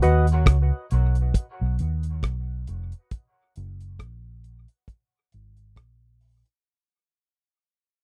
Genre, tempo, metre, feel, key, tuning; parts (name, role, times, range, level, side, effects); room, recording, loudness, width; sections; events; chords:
dub reggae; 68 BPM; 4/4; swing 56% on 16ths; A4 = 440 Hz
vintage muted fingered electric bass; bass; 0.0-6.4 s; E#1 to D#2; -25 LUFS; equal
damped 70s drum kit; drums; 0.0-6.6 s; hi-hat, kick drum, rim click; -24 LUFS; equal
little or no reverb; dry, close 1970s-style studio recording; -24 LUFS; mono
0.0-6.7 A section
fade-out 0.0-6.7